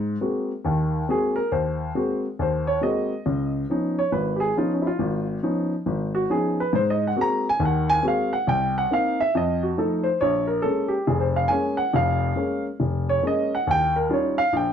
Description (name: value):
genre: solo jazz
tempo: 138 BPM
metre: 4/4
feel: swing 65% on 8ths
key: Ab mixolydian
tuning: A4 = 440 Hz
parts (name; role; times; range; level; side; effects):
- warm baby grand piano; solo; 0.0-14.7 s; F1 to Bb5; -21 LUFS; equal; none
room: moderate studio reverb, RT60 0.5 s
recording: dark, warm production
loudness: -21 LUFS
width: side -8 dB against mid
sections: 0.0-14.7 A section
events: grand piano solo 0.0-14.7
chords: 0.0 Ab9; 3.2 Db9; 6.7 Ab9; 8.5 Cm7; 9.3 F7; 10.2 Bbm7; 13.7 Eb9